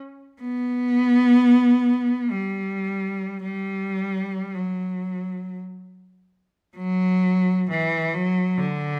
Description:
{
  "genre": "classical, free, expressive piece for unaccompanied cello",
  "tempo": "free time",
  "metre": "none",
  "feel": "none",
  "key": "B minor",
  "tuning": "A4 = 439 Hz",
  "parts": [
    { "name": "clear cello", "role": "solo", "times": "0.4-9.0 s", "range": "D3 to B3", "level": "-23 LUFS", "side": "equal", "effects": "none" }
  ],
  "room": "moderate recital hall reverb, RT60 1.4 s",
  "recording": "close, detailed microphones",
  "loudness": "-22 LUFS",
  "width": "mono",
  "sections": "0.0-6.8 A section; 6.8-9.0 B section",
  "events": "none",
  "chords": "none",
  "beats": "free time"
}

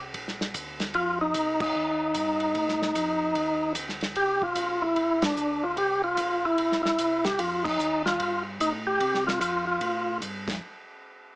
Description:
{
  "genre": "soul jazz organ trio",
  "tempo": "149 BPM",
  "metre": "4/4",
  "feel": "swing 64% on 8ths",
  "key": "F mixolydian",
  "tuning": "A4 = 441 Hz",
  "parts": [
    { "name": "mellow tonewheel organ", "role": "bass", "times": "0.0-10.6 s", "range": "E1 to C3", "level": "-40 LUFS", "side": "equal", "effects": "slow rotary speaker" },
    { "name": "warm soul drum kit", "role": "drums", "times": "0.1-10.5 s", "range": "crash cymbal, hi-hat, kick drum, ride cymbal, snare drum", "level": "-32 LUFS", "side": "equal", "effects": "none" },
    { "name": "percussive tonewheel organ", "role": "melody", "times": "0.9-10.2 s", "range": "D4 to G4", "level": "-24 LUFS", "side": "equal", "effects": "slow rotary speaker" }
  ],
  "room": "moderate studio reverb, RT60 0.5 s",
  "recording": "small speaker sound",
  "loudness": "-24 LUFS",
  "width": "side -21 dB against mid",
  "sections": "0.0-10.6 A section",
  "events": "band accent 1.6, 5.2, 7.6",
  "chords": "0.0 Bbadd9; 1.0 F9; 4.2 C9; 7.4 F9; 10.4 N.C.",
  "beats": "0.15 0.55 | 0.95 1.35 1.75 2.15 | 2.56 2.96 3.36 3.76 | 4.17 4.57 4.97 5.38 | 5.78 6.18 6.59 6.99 | 7.39 7.80 8.20 8.61 | 9.01 9.41 9.82 10.22"
}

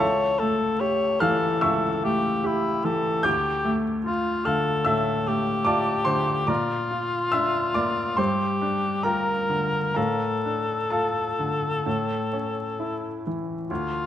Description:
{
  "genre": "classical, romantic duo for cor anglais and grand piano",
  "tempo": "63-76 BPM",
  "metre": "4/4",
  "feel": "rubato",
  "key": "D minor",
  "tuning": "A4 = 442 Hz",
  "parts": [
    { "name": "warm cor anglais", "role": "melody", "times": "0.0-14.1 s", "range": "E4 to C#5", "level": "-25 LUFS", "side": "left 2 dB", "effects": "none" },
    { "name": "bright baby grand piano", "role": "accompaniment", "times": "0.0-14.1 s", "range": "C#2 to G6", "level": "-25 LUFS", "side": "equal", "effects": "none" }
  ],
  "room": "moderate scoring stage reverb, RT60 1.5 s",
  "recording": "close, detailed microphones, vinyl crackle",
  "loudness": "-22 LUFS",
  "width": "side -11 dB against mid",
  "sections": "0.0-13.7 A section",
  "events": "none",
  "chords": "0.0 A7/C#; 3.3 Dm; 6.5 Bb; 8.2 Gm7; 10.0 Dm/A; 11.9 A",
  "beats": "| 0.01 0.82 1.64 2.46 | 3.25 4.07 4.87 5.67 | 6.49 7.33 8.18 9.05 | 9.96 10.91 11.85 12.79 | 13.70"
}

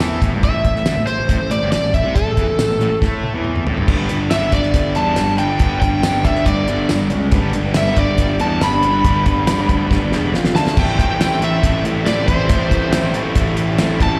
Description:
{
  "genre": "classic rock",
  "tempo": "139 BPM",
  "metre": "4/4",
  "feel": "straight",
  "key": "A minor",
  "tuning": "A4 = 440 Hz",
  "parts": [
    { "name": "bright tonewheel organ", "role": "sustained chords", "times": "0.0-14.2 s", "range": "A3 to F5", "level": "-36 LUFS", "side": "equal", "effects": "none" },
    { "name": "distorted electric guitar", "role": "riff", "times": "0.0-14.2 s", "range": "G2 to B4", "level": "-28 LUFS", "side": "equal", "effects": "distortion, slapback echo" },
    { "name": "overdriven semi-hollow guitar", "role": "riff", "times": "0.0-14.2 s", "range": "G2 to F4", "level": "-25 LUFS", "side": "equal", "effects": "slapback echo" },
    { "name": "fuzz picked electric bass", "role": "bass", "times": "0.0-14.2 s", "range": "E1 to A2", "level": "-23 LUFS", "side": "equal", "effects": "overdrive" },
    { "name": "damped 70s drum kit", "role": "drums", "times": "0.0-14.1 s", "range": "crash cymbal, hi-hat, kick drum, snare drum, tambourine, toms", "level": "-20 LUFS", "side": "equal", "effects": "none" },
    { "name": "overdriven slide guitar", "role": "melody", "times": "0.4-14.2 s", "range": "A4 to B5", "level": "-23 LUFS", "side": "equal", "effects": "slapback echo, tape echo" },
    { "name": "picked old ladder-braced acoustic guitar", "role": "accompaniment", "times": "7.3-14.2 s", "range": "G2 to C5", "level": "-29 LUFS", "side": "equal", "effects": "slapback echo" }
  ],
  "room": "light reverb, small room ambience",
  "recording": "live gig heard through the venue's PA, recital hall reverb",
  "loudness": "-17 LUFS",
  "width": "mono",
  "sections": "0.0-3.9 A section; 3.9-10.8 B section; 10.8-14.2 C section",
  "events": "drum fill 3.0-3.9, 9.9-10.8",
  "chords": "0.0 Am; 3.9 G; 7.1 C#5; 7.3 G; 10.3 F5; 10.6 D5; 10.8 Am7",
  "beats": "0.01 | 0.44 0.87 1.30 1.73 | 2.16 2.59 3.02 3.45 | 3.88 4.31 4.74 5.17 | 5.61 6.04 6.47 6.90 | 7.33 7.76 8.19 8.62 | 9.06 9.49 9.92 10.35 | 10.78 11.21 11.64 12.07 | 12.50 12.93 13.36 13.79"
}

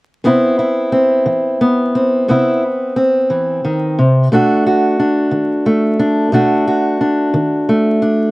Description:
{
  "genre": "blues",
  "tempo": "59 BPM (dotted quarters)",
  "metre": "12/8",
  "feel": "straight",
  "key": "unclear",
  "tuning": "A4 = 440 Hz",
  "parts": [
    { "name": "fingerpicked acoustic archtop guitar", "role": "accompaniment", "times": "0.2-8.3 s", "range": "B2 to F#4", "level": "-12 LUFS", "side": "equal", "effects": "none" }
  ],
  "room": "wet booth ambience, RT60 0.2 s",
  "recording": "dark, warm production, vinyl crackle",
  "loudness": "-12 LUFS",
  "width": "side -20 dB against mid",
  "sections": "0.2-8.3 A section",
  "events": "none",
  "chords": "0.2 Cmaj7; 4.3 B7#9",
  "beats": "| 0.24 1.26 2.27 3.29 | 4.30 5.31 6.32 7.33"
}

